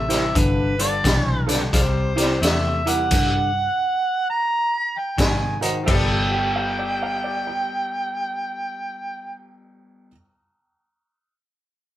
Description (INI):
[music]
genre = electric blues shuffle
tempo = 87 BPM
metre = 4/4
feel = swing 63% on 8ths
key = G mixolydian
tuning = A4 = 441 Hz
[part]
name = overdriven harmonica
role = melody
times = 0.0-9.4 s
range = F4 to Bb5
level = -24 LUFS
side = right 1 dB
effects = none
[part]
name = clean electric guitar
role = riff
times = 0.0-10.1 s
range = G2 to A4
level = -28 LUFS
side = left 2 dB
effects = none
[part]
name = vintage muted fingered electric bass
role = bass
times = 0.0-10.1 s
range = G1 to Ab2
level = -25 LUFS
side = equal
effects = none
[part]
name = clear baby grand piano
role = accompaniment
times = 0.1-10.1 s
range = E4 to E5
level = -28 LUFS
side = right 2 dB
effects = none
[part]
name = raw garage drum kit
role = drums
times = 0.1-6.1 s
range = crash cymbal, hi-hat, kick drum, snare drum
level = -22 LUFS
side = equal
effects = none
[part]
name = dark upright piano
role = second line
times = 6.3-10.1 s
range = D5 to G5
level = -31 LUFS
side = right 3 dB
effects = slapback echo
[sound]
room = moderate stone room reverb, RT60 1.1 s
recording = band playing live in one room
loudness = -19 LUFS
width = side -13 dB against mid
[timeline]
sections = 0.0-5.9 A section; 5.9-8.6 B section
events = none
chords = 0.4 G9; 1.7 C7; 3.1 G5; 5.2 Ab9; 5.9 G9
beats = | 0.35 1.04 1.73 2.42 | 3.11 3.79 4.48 5.17 | 5.86 6.55 7.24 7.93